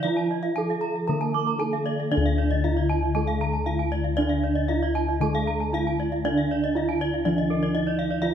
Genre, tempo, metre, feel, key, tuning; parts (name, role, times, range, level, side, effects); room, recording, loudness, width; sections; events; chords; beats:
Balinese gamelan; 116 BPM; 4/4; straight; D pelog; A4 = 440 Hz
gamelan-type bronze metallophone; melody; 0.0-8.3 s; D4 to Bb4-40c; -27 LUFS; right 3 dB
gamelan-type bronze metallophone; accompaniment; 0.0-8.3 s; D3 to Bb3-40c; -34 LUFS; right 5 dB
gamelan-type bronze metallophone; arpeggios; 0.0-8.3 s; D5 to Bb5-40c; -30 LUFS; equal
gamelan-type bronze metallophone; arpeggios; 0.0-8.2 s; Bb4-40c to D6; -33 LUFS; right 6 dB
gamelan-type bossed gongs; bass; 0.0-8.3 s; D2 to E4+50c; -26 LUFS; left 3 dB
moderate recital hall reverb, RT60 1.6 s; -22 LUFS; side -8 dB against mid
0.0-8.3 A section
| 0.04 0.56 1.07 1.59 | 2.11 2.63 3.14 3.66 | 4.18 4.70 5.21 5.73 | 6.25 6.76 7.26 7.75 | 8.23